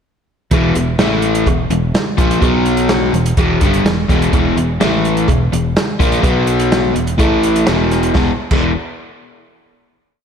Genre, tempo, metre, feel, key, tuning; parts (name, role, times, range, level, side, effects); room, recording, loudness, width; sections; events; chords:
classic rock; 126 BPM; 4/4; straight; A4 = 440 Hz
crunchy overdriven guitar; riff; 0.5-8.7 s; E2 to B3; -15 LUFS; left 1 dB; spring reverb, slapback echo
fingered electric bass; bass; 0.5-8.7 s; E1 to B1; -20 LUFS; equal
vintage drum kit; drums; 0.5-8.6 s; crash cymbal, hi-hat, kick drum, snare drum; -17 LUFS; equal
cowbell; percussion; 0.5-8.7 s; -30 LUFS; right 8 dB
light reverb, studio ambience; -12 LUFS; side -7 dB against mid
0.5-8.2 riff; 8.2-10.1 final chord
0.5 E5; 1.0 A5; 1.5 E5; 2.4 B5; 3.1 E5; 4.8 A5; 5.3 E5; 6.2 B5; 7.0 E5; 7.2 A5; 7.7 E5